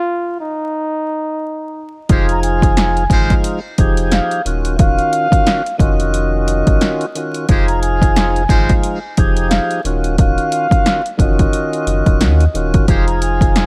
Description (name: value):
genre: hip hop, boom-bap hip-hop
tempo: 89 BPM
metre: 4/4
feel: swing 59% on 16ths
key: F phrygian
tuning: A4 = 440 Hz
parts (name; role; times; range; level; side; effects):
- trumpet with bucket mute; melody; 0.0-13.7 s; Eb4 to Bb5; -22 LUFS; equal; high-pass filter, low-pass filter, digital delay
- tonewheel organ; accompaniment; 2.1-13.7 s; Eb3 to Ab4; -22 LUFS; equal; slow rotary speaker, cassette tape, high-pass filter, low-pass filter
- muted trumpet section; stabs; 2.1-3.3, 7.5-8.7, 12.9-13.0 s; G3 to C5; -28 LUFS; equal; high-pass filter, low-pass filter, digital delay
- warm sub bass; bass; 2.1-13.7 s; Eb1 to Eb2; -20 LUFS; equal; none
- punchy analog drum machine; drums; 2.1-13.7 s; hi-hat, kick drum, snare drum; -16 LUFS; equal; none
room: little or no reverb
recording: vinyl crackle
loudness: -15 LUFS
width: mono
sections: 0.0-2.1 A section; 2.1-13.7 B section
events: stop 0.0-2.1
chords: 0.0 N.C.; 2.1 Fm9; 4.5 Ebm9; 7.5 Fm9; 9.8 Ebm9; 12.9 Fm9